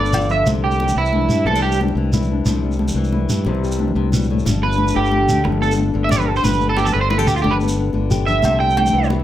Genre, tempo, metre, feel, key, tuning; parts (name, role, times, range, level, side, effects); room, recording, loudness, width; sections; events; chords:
highlife guitar band; 120 BPM (dotted quarters); 12/8; straight; C major; A4 = 438 Hz
flamenco guitar; accompaniment; 0.0-9.2 s; G2 to A4; -23 LUFS; left 8 dB; plate reverb
electric guitar at the edge of break-up; arpeggios; 0.0-9.1 s; E4 to G5; -19 LUFS; right 3 dB; analog chorus, slapback echo, plate reverb
modern bright fingered electric bass; bass; 0.0-9.2 s; G1 to G2; -20 LUFS; equal
agogo bells; percussion; 0.1-0.3, 8.4-8.9 s; -29 LUFS; left 1 dB
congas; percussion; 0.1-9.2 s; -24 LUFS; equal
shekere; percussion; 0.1-9.1 s; -24 LUFS; right 1 dB
moderate studio reverb, RT60 0.5 s; -15 LUFS; side -12 dB against mid
0.5-9.2 A section
drum fill 0.0-0.5, 7.8-8.4; clean electric guitar solo 0.5-9.2
0.5 Cadd9; 4.5 G; 8.4 Cadd9